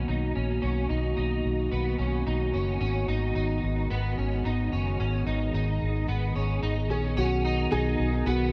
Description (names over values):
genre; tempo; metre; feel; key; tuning
dream pop; 110 BPM; 4/4; straight; B major; A4 = 440 Hz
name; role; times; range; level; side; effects
warbly tape-like pad; sustained chords; 0.0-8.5 s; D#3 to A#4; -33 LUFS; equal; chorus, built-in reverb, low-pass filter, shimmer reverb
electric guitar at the edge of break-up; arpeggios; 0.0-8.5 s; B3 to D#4; -35 LUFS; equal; ensemble chorus, low-pass filter, shimmer reverb, tape echo
vintage muted fingered electric bass; bass; 0.0-8.5 s; F#1 to B1; -30 LUFS; equal; none
felt-muted upright piano; melody; 6.9-8.5 s; F#4 to G#4; -32 LUFS; equal; shimmer reverb, tape echo
room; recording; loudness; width
moderate plate reverb, RT60 2.7 s; dark, warm production; -28 LUFS; mono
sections
0.0-7.2 A section; 7.2-8.5 B section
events
none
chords
0.0 Bmaj7; 2.8 G#m7; 7.2 Bmaj7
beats
0.09 | 0.63 1.18 1.72 2.27 | 2.81 3.36 3.90 4.45 | 4.99 5.54 6.08 6.63 | 7.17 7.72 8.27